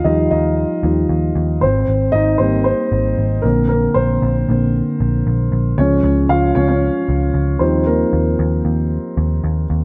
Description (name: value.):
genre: piano-driven pop.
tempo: 115 BPM.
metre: 4/4.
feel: straight.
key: unclear.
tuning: A4 = 443 Hz.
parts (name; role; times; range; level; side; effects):
dark upright piano; accompaniment; 0.0-9.8 s; D3 to F5; -19 LUFS; equal; none.
vintage muted picked electric bass; bass; 0.1-9.8 s; Ab1 to Eb2; -20 LUFS; equal; none.
room: moderate lush hall reverb, RT60 2.0 s.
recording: none.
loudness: -16 LUFS.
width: mono.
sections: 0.0-9.8 A section.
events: upright piano solo 0.0-9.8.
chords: 0.0 Ebadd9; 1.6 Abmaj7; 3.4 Bbadd9; 5.8 Db; 7.6 Ebadd9.